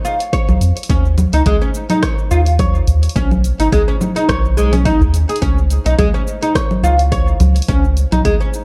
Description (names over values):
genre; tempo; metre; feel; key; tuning
organic downtempo; 106 BPM; 4/4; swing 55% on 16ths; unclear; A4 = 442 Hz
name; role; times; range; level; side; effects
oud; arpeggios; 0.0-8.5 s; Ab3 to Db5; -20 LUFS; equal; digital delay
deep house drum kit; drums; 0.1-8.6 s; cabasa, congas, hi-hat, rim click; -24 LUFS; equal; none
electronic kick drum; drums; 0.3-8.4 s; none; -21 LUFS; equal; none
udu; percussion; 0.5-8.4 s; none; -20 LUFS; equal; none
round analog bass; bass; 0.6-8.2 s; Ab1 to F2; -16 LUFS; equal; sidechain pumping
room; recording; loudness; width
light reverb, digital ambience; dark, warm production; -15 LUFS; mono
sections
0.0-8.6 A section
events
none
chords
0.0 Db; 0.9 N.C.; 3.2 Cb6; 5.4 N.C.